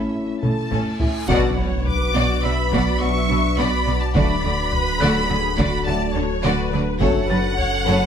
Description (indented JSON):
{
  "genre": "cinematic, hybrid orchestral and electronic film score",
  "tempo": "105 BPM",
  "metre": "5/4",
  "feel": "straight",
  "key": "B minor",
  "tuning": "A4 = 440 Hz",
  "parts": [
    { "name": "rich symphonic violin section", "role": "melody", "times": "0.0-8.1 s", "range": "E5 to D6", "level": "-25 LUFS", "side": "equal", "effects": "none" },
    { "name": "rich symphonic violin section", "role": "second line", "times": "0.0-8.1 s", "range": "C#4 to D5", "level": "-28 LUFS", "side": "left 1 dB", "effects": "none" },
    { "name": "rich symphonic viola section", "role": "accompaniment", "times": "0.0-8.1 s", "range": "C#4 to E5", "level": "-29 LUFS", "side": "left 3 dB", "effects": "none" },
    { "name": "glassy FM pad", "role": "sustained chords", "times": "0.0-8.1 s", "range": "F#3 to E5", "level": "-28 LUFS", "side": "left 1 dB", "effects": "ensemble chorus, built-in reverb" },
    { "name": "mellow French horn section", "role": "sustained chords", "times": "0.0-7.2 s", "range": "C#4 to F#4", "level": "-28 LUFS", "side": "left 5 dB", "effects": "none" },
    { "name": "harp-like synth pluck", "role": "arpeggios", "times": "0.0-8.0 s", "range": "D3 to B4", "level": "-29 LUFS", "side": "equal", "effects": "chorus, phaser, ping-pong delay" },
    { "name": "reverse cymbal and impact", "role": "sound effects", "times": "1.0-4.1 s", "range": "none", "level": "-30 LUFS", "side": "equal", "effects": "none" },
    { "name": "felt-muted upright piano", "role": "texture", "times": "0.0-8.1 s", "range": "D5 to A6", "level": "-36 LUFS", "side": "left 2 dB", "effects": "none" },
    { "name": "rich symphonic double bass section", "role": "bass", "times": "0.4-7.9 s", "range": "F#1 to D2", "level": "-26 LUFS", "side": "right 2 dB", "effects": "none" },
    { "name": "warm studio cello section", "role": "bass", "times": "0.4-8.0 s", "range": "F#2 to D3", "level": "-26 LUFS", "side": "right 1 dB", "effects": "none" },
    { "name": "taiko ensemble", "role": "drums", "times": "0.4-7.8 s", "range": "none", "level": "-26 LUFS", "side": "equal", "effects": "none" },
    { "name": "mellow trombone section", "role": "sustained chords", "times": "1.3-7.2 s", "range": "F#3 to B3", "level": "-32 LUFS", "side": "right 4 dB", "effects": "none" },
    { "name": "sub bass with octave", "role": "bass", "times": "1.3-8.1 s", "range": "D1 to B1", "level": "-26 LUFS", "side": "equal", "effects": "none" }
  ],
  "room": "moderate recital hall reverb, RT60 1.5 s",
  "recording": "close, detailed microphones",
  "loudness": "-18 LUFS",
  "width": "side -8 dB against mid",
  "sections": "0.0-1.3 A section; 1.3-8.1 B section",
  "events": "build-up 0.0-1.3; drum fill 0.4-1.3; reverse cymbal 1.0-1.3; band accent 1.3-1.9; impact 1.3-4.1",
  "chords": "0.0 A; 1.3 Bm; 4.1 D; 7.0 F#m",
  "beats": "0.15 0.72 | 1.29 1.86 2.43 3.00 3.58 | 4.15 4.72 5.29 5.86 6.43 | 7.00 7.58"
}